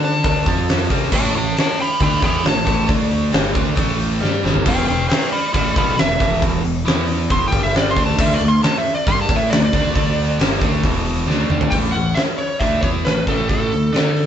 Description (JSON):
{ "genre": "blues rock power trio and southern rock", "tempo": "136 BPM", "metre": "4/4", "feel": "straight", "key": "unclear", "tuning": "A4 = 445 Hz", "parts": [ { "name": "overdriven slide guitar", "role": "melody", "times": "0.0-14.3 s", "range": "A4 to C6", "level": "-21 LUFS", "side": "equal", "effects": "none" }, { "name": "biting overdriven guitar", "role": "riff", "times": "0.0-14.3 s", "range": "E2 to D5", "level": "-21 LUFS", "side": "equal", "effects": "none" }, { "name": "fuzz fingered electric bass", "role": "bass", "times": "0.0-14.3 s", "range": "E1 to D3", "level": "-23 LUFS", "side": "equal", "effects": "overdrive" }, { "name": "big rock drum kit", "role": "drums", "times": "0.0-14.3 s", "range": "crash cymbal, hi-hat, kick drum, snare drum, splash cymbal, toms", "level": "-19 LUFS", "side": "equal", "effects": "none" } ], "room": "moderate stone room reverb, RT60 1.0 s", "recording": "band playing live in one room, nothing above 8.0 kHz", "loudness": "-15 LUFS", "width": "side -9 dB against mid", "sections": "0.0-11.7 A section; 11.7-14.3 B section", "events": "electric slide guitar solo 0.0-11.7; drum fill 4.2-4.7, 11.3-11.7", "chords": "0.5 F5; 0.9 C5; 1.1 A7; 2.9 D5; 3.3 A5; 4.7 E5; 7.5 G5; 8.0 D5; 10.4 Gsus2; 10.8 E5; 11.7 A5; 13.7 D5" }